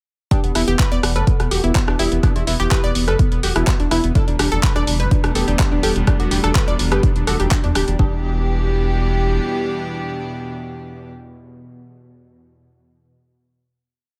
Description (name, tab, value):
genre	melodic techno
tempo	125 BPM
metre	4/4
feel	straight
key	E minor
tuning	A4 = 439 Hz
part	unison lead	melody	0.3-11.1 s	B3 to B4	-28 LUFS	equal	sidechain pumping, tape echo
part	dark detuned synth bell	second line	0.3-11.1 s	D4 to B4	-32 LUFS	equal	chorus, sidechain pumping, delay
part	analog pluck	arpeggios	0.3-8.2 s	D4 to D5	-27 LUFS	equal	chorus, sidechain pumping, delay
part	bowed-like drone	drone	1.3-11.1 s	E2 to B2	-36 LUFS	equal	none
part	deep house drum kit	drums	0.3-8.0 s	handclaps, hi-hat, rim click	-26 LUFS	equal	sidechain pumping on hats
part	electronic kick drum	drums	0.3-8.1 s	none	-20 LUFS	equal	none
part	round analog bass	bass	0.4-9.4 s	D1 to E2	-23 LUFS	equal	sidechain pumping
part	rich chamber string section	sustained chords	4.2-11.1 s	E3 to G4	-30 LUFS	equal	sidechain pumping
room	little or no reverb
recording	none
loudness	-18 LUFS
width	mono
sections	0.3-8.0 drop; 8.0-11.8 final chord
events	drop 0.3-8.0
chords	0.3 Em; 4.2 Gadd9/E; 8.0 Em7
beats	| 0.31 0.79 1.27 1.75 | 2.23 2.71 3.19 3.67 | 4.15 4.63 5.11 5.59 | 6.07 6.55 7.03 7.51 | 7.99 8.47 8.95 9.43 | 9.91 10.39 10.87